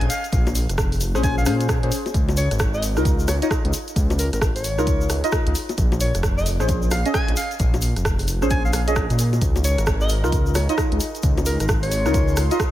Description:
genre	UK garage, two-step garage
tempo	132 BPM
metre	4/4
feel	swing 62% on 16ths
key	Db major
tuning	A4 = 445 Hz
part	breathy alto saxophone	melody	0.0-12.5 s	Bb4 to Ab5	-29 LUFS	left 1 dB	ping-pong delay
part	dark detuned saw bass	bass	0.0-12.5 s	F1 to Bb2	-22 LUFS	equal	none
part	garage drum kit	drums	0.0-12.7 s	bongos, hi-hat, rim click	-28 LUFS	equal	none
part	tube shaker	percussion	0.1-12.7 s	none	-33 LUFS	left 2 dB	none
part	electronic kick drum	drums	0.3-12.7 s	none	-23 LUFS	equal	none
part	deep mellow chord stab	stabs	1.1-12.6 s	Db4 to Eb5	-25 LUFS	equal	chorus, ping-pong delay
part	warm analog pad	sustained chords	9.4-12.7 s	Eb4 to C6	-33 LUFS	left 2 dB	chorus, sidechain pumping
room	light reverb, digital ambience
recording	none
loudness	-18 LUFS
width	side -14 dB against mid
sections	0.0-12.7 A section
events	none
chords	0.0 Bbm9; 2.1 Dbadd9; 5.8 Bbm7; 9.4 Db69

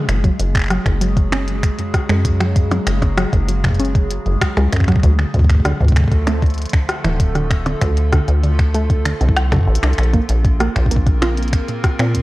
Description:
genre	IDM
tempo	97 BPM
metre	4/4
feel	straight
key	unclear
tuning	A4 = 440 Hz
part	warbly tape-like pad	sustained chords	0.0-12.2 s	C#3 to A#4	-27 LUFS	right 1 dB	chorus, built-in reverb, phaser
part	warbly dusty pluck	arpeggios	0.0-12.1 s	D2 to E#4	-24 LUFS	right 1 dB	chorus, cassette tape, digital delay
part	deep acid bass	bass	0.1-12.2 s	D1 to A#2	-17 LUFS	equal	none
part	glitchy drum kit	drums	0.1-12.2 s	finger snaps, hi-hat, percussion blips, rim click	-23 LUFS	equal	small room ambience, ping-pong delay
part	electronic kick drum	drums	0.2-12.2 s	none	-16 LUFS	equal	small room ambience
room	light reverb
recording	worn, warbling old tape, cassette tape, warbly pitch drift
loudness	-14 LUFS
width	side -18 dB against mid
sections	0.1-12.2 A section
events	none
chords	0.1 F#sus2; 5.0 Dm; 10.0 A#madd9

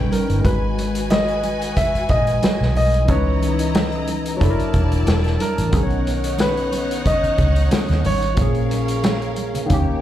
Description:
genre	lush 1970s-style soul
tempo	91 BPM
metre	4/4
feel	swing 54% on 16ths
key	G# minor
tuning	A4 = 439 Hz
part	clear studio string section	second line	0.0-10.0 s	A#3 to A#5	-29 LUFS	equal	slapback echo
part	barky tine electric piano	accompaniment	0.0-10.0 s	D#3 to C#5	-24 LUFS	left 2 dB	overdrive, phaser, slapback echo
part	vintage muted fingered electric bass	bass	0.0-9.9 s	E1 to D#2	-21 LUFS	equal	none
part	warm grand piano	melody	0.1-10.0 s	A#4 to E5	-24 LUFS	equal	slapback echo
part	vintage drum kit	drums	0.1-9.9 s	hi-hat, kick drum, snare drum	-22 LUFS	equal	none
part	congas	percussion	0.1-9.7 s	none	-29 LUFS	right 7 dB	none
room	small room ambience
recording	live gig heard through the venue's PA, club reverb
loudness	-16 LUFS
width	side -12 dB against mid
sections	0.0-10.0 A section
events	none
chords	0.4 G#m7; 3.1 C#m9; 4.4 F#7alt; 5.7 Bmaj9; 8.4 A#m7

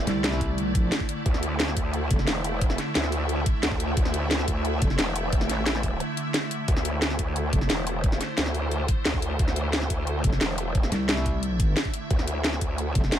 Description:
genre	dark technical drum and bass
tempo	177 BPM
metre	4/4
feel	straight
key	unclear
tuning	A4 = 442 Hz
part	swarming drone	sustained chords	0.0-13.2 s	D3 to E5	-31 LUFS	equal	built-in reverb, sidechain pumping
part	growl bass	bass	0.0-13.2 s	E1 to D2	-28 LUFS	equal	chorus, overdrive, sidechain pumping
part	metallic wobble bass	bass	0.1-2.3, 4.8-5.0, 7.5-7.7, 10.2-13.1 s	F1 to C2	-26 LUFS	equal	chorus
part	drum and bass drum kit	drums	0.1-13.2 s	hi-hat, snare drum	-27 LUFS	equal	none
part	electronic kick drum	drums	0.4-13.0 s	none	-25 LUFS	equal	none
room	little or no reverb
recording	none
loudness	-23 LUFS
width	side -10 dB against mid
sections	0.0-13.2 A section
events	break 6.0-6.7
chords	0.0 D5

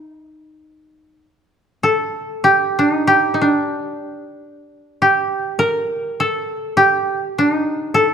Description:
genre	japanese traditional, Japanese chamber music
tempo	50 BPM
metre	4/4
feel	rubato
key	unclear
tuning	A4 = 439 Hz
part	koto	solo	0.0-8.1 s	D4 to Bb4	-15 LUFS	equal	none
room	moderate recital hall reverb, RT60 1.7 s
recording	none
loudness	-15 LUFS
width	side -7 dB against mid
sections	0.0-5.0 A section; 5.0-8.1 B section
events	none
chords	none

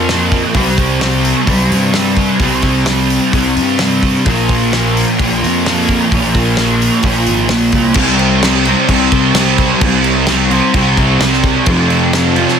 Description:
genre	rock, shoegaze and dream pop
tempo	129 BPM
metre	4/4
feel	straight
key	unclear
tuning	A4 = 440 Hz
part	fuzz guitar	riff	0.0-12.6 s	F2 to C4	-12 LUFS	equal	distortion, analog chorus
part	fuzz picked electric bass	bass	0.0-12.4 s	Ab1 to G2	-18 LUFS	equal	overdrive
part	loose indie drum kit	drums	0.1-12.5 s	crash cymbal, hi-hat, kick drum, snare drum	-16 LUFS	equal	none
room	little or no reverb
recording	dense, heavily limited modern master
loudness	-10 LUFS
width	side -7 dB against mid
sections	0.0-8.0 A section; 8.0-12.6 B section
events	none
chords	0.0 Bb5; 0.6 C5; 4.3 Bb5; 8.0 C5; 11.7 F5

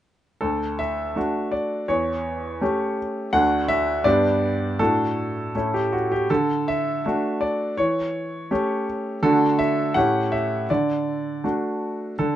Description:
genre	classical-period piano sonatina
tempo	82 BPM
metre	2/4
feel	straight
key	D major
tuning	A4 = 441 Hz
part	clear grand piano	solo	0.4-12.4 s	D2 to F#5	-20 LUFS	equal	none
room	light reverb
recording	nothing above 10.3 kHz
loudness	-21 LUFS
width	side -12 dB against mid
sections	0.4-12.2 A section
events	none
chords	0.4 D; 1.9 A7/E; 3.3 D; 4.1 G; 4.8 D/A; 5.5 A; 6.3 D; 7.8 A7/E; 9.2 D; 10.0 A7; 10.7 D

